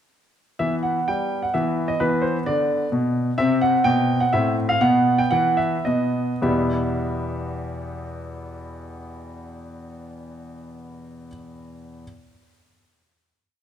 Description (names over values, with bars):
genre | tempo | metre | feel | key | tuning
classical-period piano sonatina | 102-131 BPM | 3/4 | rubato | E minor | A4 = 440 Hz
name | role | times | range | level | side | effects
clear grand piano | solo | 0.6-12.0 s | E2 to G5 | -21 LUFS | equal | none
room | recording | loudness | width
wet recital hall reverb, RT60 1.4 s | none | -19 LUFS | side -9 dB against mid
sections
0.6-6.4 theme; 6.4-9.8 final chord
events
slowing down 2.7-6.4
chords
0.6 Em; 1.5 E5; 2.0 Bm; 3.4 Cmaj7#11; 4.3 Am; 4.8 Bsus4; 5.9 N.C.; 6.4 Em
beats
| 0.60 1.07 1.53 | 2.00 2.46 2.92 | 3.39 3.85 4.33 | 4.81 5.32 5.85 | 6.43 7.00 7.56 | 8.13 8.69 9.25